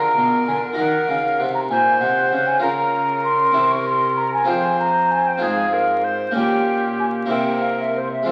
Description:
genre	classical, baroque-style sonata movement with continuo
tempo	64 BPM (dotted quarters)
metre	6/8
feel	straight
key	F minor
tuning	A4 = 440 Hz
part	bright tenor recorder	melody	0.0-8.3 s	G4 to C5	-26 LUFS	equal	none
part	baroque flute	second line	0.0-8.3 s	C5 to Db6	-22 LUFS	equal	none
part	harpsichord	accompaniment	0.0-8.3 s	F2 to Bb4	-26 LUFS	equal	none
part	rich cello	bass	0.0-8.3 s	F2 to Eb3	-34 LUFS	equal	none
room	wet recital hall reverb, RT60 1.4 s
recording	very old 78 rpm record, vinyl crackle, nothing above 10.7 kHz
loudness	-19 LUFS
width	mono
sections	0.0-8.3 A section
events	none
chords	0.0 Bb7; 0.8 Ebm; 2.6 Bbm/Db; 3.6 C; 4.5 Fm; 5.4 Fm/Ab; 6.4 Gdim/Bb; 7.3 C7

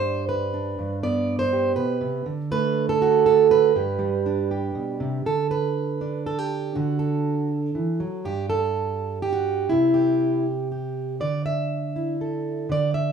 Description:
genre	folk, solo fingerstyle acoustic guitar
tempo	121 BPM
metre	3/4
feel	straight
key	unclear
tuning	A4 = 440 Hz
part	fingerpicked plugged-in steel-string acoustic guitar	solo	0.0-13.1 s	G2 to E5	-21 LUFS	right 3 dB	none
room	light reverb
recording	rough home demo mix, studio ambience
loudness	-21 LUFS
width	side -6 dB against mid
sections	0.0-5.3 A section; 5.3-13.1 B section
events	none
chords	0.0 G; 2.3 D; 3.8 G; 5.3 D; 8.2 N.C.; 9.7 C; 11.2 Dsus2

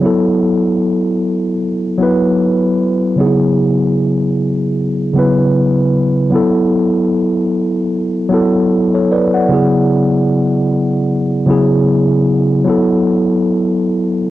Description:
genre	hip hop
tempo	76 BPM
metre	4/4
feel	swing 58% on 16ths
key	unclear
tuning	A4 = 441 Hz
part	mellow tine electric piano	solo	0.0-14.3 s	C#3 to F#5	-12 LUFS	equal	medium stereo tremolo, cassette tape, low-pass filter
room	light reverb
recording	worn, warbling old tape, cassette tape, warbly pitch drift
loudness	-12 LUFS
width	side -14 dB against mid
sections	0.0-6.3 A section; 6.3-14.3 B section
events	none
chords	0.0 B5; 3.2 C#m7; 6.3 B5; 9.5 C#m7; 12.7 B5

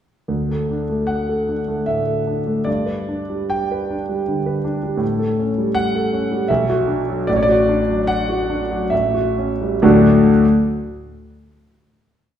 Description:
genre	classical, romantic character piece for solo piano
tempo	62-82 BPM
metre	3/4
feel	rubato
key	D major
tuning	A4 = 439 Hz
part	warm concert grand piano	solo	0.3-10.5 s	A1 to G5	-16 LUFS	equal	none
room	wet recital hall reverb, RT60 1.4 s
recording	recorded in a church or concert hall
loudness	-16 LUFS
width	side -9 dB against mid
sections	0.3-9.8 A section; 9.8-12.4 final chord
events	slowing down 3.9-9.8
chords	0.3 D; 2.7 G; 5.0 A7; 6.5 Bm; 7.3 D/A; 8.9 A6; 9.8 D

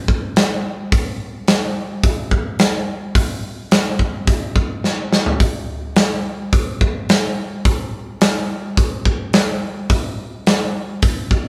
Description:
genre	rock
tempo	107 BPM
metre	4/4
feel	straight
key	none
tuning	none
part	big rock drum kit	drums	0.1-11.4 s	hi-hat, kick drum, snare drum, toms	-19 LUFS	equal	none
room	light reverb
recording	band playing live in one room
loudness	-19 LUFS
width	mono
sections	0.0-11.5 A section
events	drum fill 4.8-5.4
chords	none

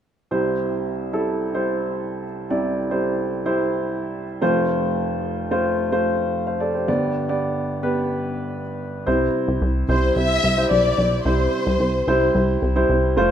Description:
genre	pop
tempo	110 BPM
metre	4/4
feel	straight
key	C major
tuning	A4 = 436 Hz
part	warm baby grand piano	accompaniment	0.3-13.3 s	F1 to F5	-21 LUFS	right 1 dB	none
part	plucky analog bass	bass	9.1-13.3 s	F1 to C2	-21 LUFS	equal	none
part	warm studio violin section	melody	9.9-12.4 s	C5 to E5	-22 LUFS	left 3 dB	ping-pong delay
room	light reverb, studio reverb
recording	rough home demo mix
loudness	-19 LUFS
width	side -9 dB against mid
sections	0.3-9.1 A section; 9.1-13.3 B section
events	none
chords	0.3 C; 4.4 F; 6.9 G; 9.1 C

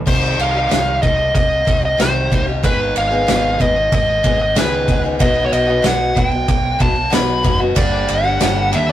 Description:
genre	quiet-loud alternative rock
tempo	93 BPM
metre	4/4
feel	straight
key	unclear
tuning	A4 = 440 Hz
part	picked acoustic archtop guitar	arpeggios	0.0-8.9 s	G2 to G#4	-21 LUFS	left 2 dB	none
part	dark smooth lead guitar	melody	0.1-8.9 s	B4 to B5	-17 LUFS	equal	overdrive
part	growling fingered electric bass	bass	0.1-8.9 s	F#1 to D#2	-22 LUFS	equal	overdrive
part	loose indie drum kit	drums	0.1-8.9 s	crash cymbal, kick drum, ride cymbal, snare drum	-18 LUFS	equal	none
room	moderate booth ambience, RT60 0.2 s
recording	rough rehearsal-room recording, warm saturation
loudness	-13 LUFS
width	side -12 dB against mid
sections	0.1-8.9 A section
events	none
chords	0.1 Cm; 2.6 G#m; 5.2 B; 7.8 Gm

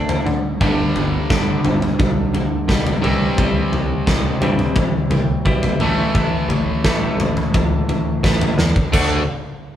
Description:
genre	quiet-loud alternative rock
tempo	86 BPM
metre	4/4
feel	straight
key	unclear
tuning	A4 = 444 Hz
part	twelve-string electric guitar	arpeggios	0.0-9.2 s	G2 to F#4	-24 LUFS	equal	none
part	crunchy overdriven guitar	riff	0.0-9.2 s	G2 to D4	-22 LUFS	equal	none
part	picked electric bass	bass	0.0-9.3 s	G1 to D3	-23 LUFS	equal	none
part	big rock drum kit	drums	0.1-9.1 s	crash cymbal, kick drum, snare drum, toms	-19 LUFS	equal	none
room	moderate studio reverb, RT60 0.8 s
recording	band playing live in one room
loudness	-15 LUFS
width	side -10 dB against mid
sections	0.0-8.9 A section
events	drum fill 8.6-8.9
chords	0.0 D5; 0.6 G; 3.0 C; 5.8 A; 8.9 D

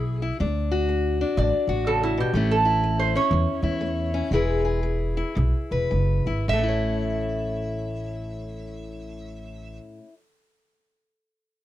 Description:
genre	acoustic country blues, solo or duo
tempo	103-124 BPM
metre	4/4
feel	swing 63% on 8ths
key	A major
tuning	A4 = 439 Hz
part	lap resonator guitar	melody	0.0-9.8 s	E4 to E5	-26 LUFS	right 3 dB	none
part	fingerpicked steel-string acoustic guitar	accompaniment	0.0-10.2 s	A2 to C#5	-27 LUFS	left 3 dB	none
part	upright bass	bass	0.0-9.8 s	E1 to E2	-26 LUFS	equal	none
room	little or no reverb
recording	dry, close 1970s-style studio recording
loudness	-22 LUFS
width	side -13 dB against mid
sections	0.0-6.5 A section; 6.5-11.1 B section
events	slowing down 2.3-6.5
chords	0.4 D; 2.3 A; 4.3 E; 6.5 A

